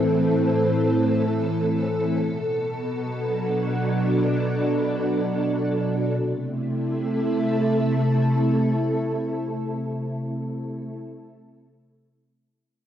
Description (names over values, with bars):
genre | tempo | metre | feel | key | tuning
IDM | free time | none | none | unclear | A4 = 440 Hz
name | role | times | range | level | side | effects
soft string machine | sustained chords | 0.0-10.9 s | A2 to A4 | -21 LUFS | equal | ensemble chorus, cassette tape
room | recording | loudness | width
wet small room reverb, RT60 0.5 s | home recording on cassette | -21 LUFS | side -10 dB against mid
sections
0.0-6.2 A section; 6.2-10.2 B section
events
none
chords
0.0 Am; 2.2 D6; 6.2 Am